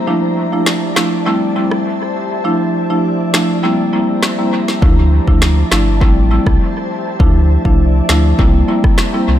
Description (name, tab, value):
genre	dancehall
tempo	101 BPM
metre	4/4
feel	straight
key	D minor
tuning	A4 = 440 Hz
part	glassy FM pad	sustained chords	0.0-9.4 s	F3 to Bb5	-22 LUFS	left 2 dB	ensemble chorus, built-in reverb, sidechain pumping
part	marimba with medium hard mallets	accompaniment	0.1-9.3 s	F3 to E4	-16 LUFS	right 1 dB	none
part	afro-pop drum kit	drums	0.7-9.1 s	finger snaps, kick drum, rim click, snare drum	-15 LUFS	equal	dub echo
part	sub bass with octave	bass	4.8-9.4 s	G1 to D2	-12 LUFS	equal	none
room	light reverb, digital ambience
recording	echo-heavy mix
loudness	-11 LUFS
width	side -12 dB against mid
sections	0.0-9.4 A section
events	break 0.0-4.8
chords	0.1 Dmadd9; 1.3 Am7; 2.4 Dmadd9; 3.6 C7; 4.8 Dmadd9; 6.0 Am7; 7.2 Dmadd9; 8.4 C7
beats	| 0.07 0.66 1.26 1.85 | 2.45 3.04 3.63 4.23 | 4.82 5.42 6.01 6.61 | 7.20 7.79 8.39 8.98